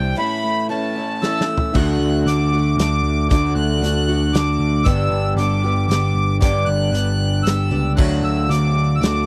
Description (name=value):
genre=folk rock and heartland rock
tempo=116 BPM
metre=3/4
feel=straight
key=D major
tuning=A4 = 440 Hz
part: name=accordion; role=melody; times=0.0-9.3 s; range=G5 to F#6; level=-26 LUFS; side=equal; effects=tape echo
part: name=picked acoustic archtop guitar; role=accompaniment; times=0.0-9.3 s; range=G2 to G4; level=-27 LUFS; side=equal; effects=none
part: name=electric guitar through a small old amp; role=riff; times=0.0-9.3 s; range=G2 to G4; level=-26 LUFS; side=equal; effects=none
part: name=picked electric bass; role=bass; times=0.0-9.3 s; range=G1 to D2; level=-22 LUFS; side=equal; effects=none
part: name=loose indie drum kit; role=drums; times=1.2-9.1 s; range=crash cymbal, hi-hat, kick drum, snare drum, toms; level=-22 LUFS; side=equal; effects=none
room=little or no reverb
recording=dry, close 1970s-style studio recording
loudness=-18 LUFS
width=mono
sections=0.0-1.7 A section; 1.7-9.3 B section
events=drum fill 1.2-1.7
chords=0.2 A; 1.7 D; 4.9 G; 8.0 D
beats=| 0.18 0.70 1.23 | 1.74 2.26 2.78 | 3.30 3.82 4.34 | 4.86 5.38 5.90 | 6.42 6.94 7.46 | 7.98 8.49 9.01